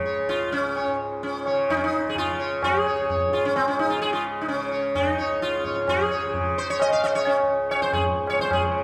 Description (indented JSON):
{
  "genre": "indian classical, Hindustani",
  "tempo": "129 BPM",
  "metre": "7/4",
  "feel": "straight",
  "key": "Db raga hamsadhwani",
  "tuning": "A4 = 440 Hz",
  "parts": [
    { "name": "tanpura", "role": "drone", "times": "0.0-8.8 s", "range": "Db2 to Db3", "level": "-34 LUFS", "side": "equal", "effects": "none" },
    { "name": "sitar", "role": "melody", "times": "0.1-8.6 s", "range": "C4 to F5", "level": "-26 LUFS", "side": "equal", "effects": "none" },
    { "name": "tabla", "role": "percussion", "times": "0.3-8.7 s", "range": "none", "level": "-30 LUFS", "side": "equal", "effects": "none" }
  ],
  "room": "wet recital hall reverb, RT60 1.4 s",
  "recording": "recorded in a church or concert hall",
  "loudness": "-24 LUFS",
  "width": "mono",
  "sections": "0.0-8.8 A section",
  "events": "none",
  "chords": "none"
}